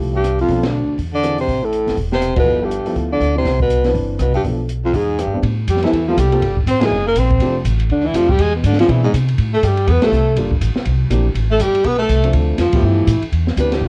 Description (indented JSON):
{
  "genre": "jazz, small-group swing and bop",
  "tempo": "243 BPM",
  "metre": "4/4",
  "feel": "swing 60% on 8ths",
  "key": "C major",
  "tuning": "A4 = 437 Hz",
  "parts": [
    { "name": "warm baby grand piano", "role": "accompaniment", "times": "0.0-13.9 s", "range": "E3 to D5", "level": "-25 LUFS", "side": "equal", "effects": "cassette tape" },
    { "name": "upright bass", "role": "bass", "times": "0.0-13.9 s", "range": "E1 to C3", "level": "-20 LUFS", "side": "equal", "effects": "none" },
    { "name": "bright baritone saxophone", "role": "second line", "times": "0.1-13.2 s", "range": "D2 to C4", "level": "-24 LUFS", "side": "equal", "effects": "cassette tape" },
    { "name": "breathy alto saxophone", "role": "melody", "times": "0.2-13.9 s", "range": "G#3 to D5", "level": "-21 LUFS", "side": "equal", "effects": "cassette tape" },
    { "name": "open jazz drum kit", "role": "drums", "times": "0.2-13.9 s", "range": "hi-hat, kick drum, ride cymbal, rim click, snare drum", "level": "-26 LUFS", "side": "equal", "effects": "cassette tape" }
  ],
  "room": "studio reverb",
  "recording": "home recording on cassette",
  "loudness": "-16 LUFS",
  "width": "mono",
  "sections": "0.0-5.4 A section; 5.4-13.3 B section",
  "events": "band accent 0.6, 2.3, 6.8, 10.0",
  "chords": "0.5 Bm7b5; 1.0 E7b13; 1.5 Am; 2.5 G13; 3.5 Cmaj9; 4.4 Bm7b5; 4.9 E7alt; 5.4 Am9; 6.4 Gmadd9; 6.9 F#; 7.4 F69; 8.4 E7b13; 9.4 Am7; 10.4 Gm9; 10.9 C9; 11.4 Fadd9 (rootless); 12.3 Dm7; 12.8 G13; 13.3 Cmaj9"
}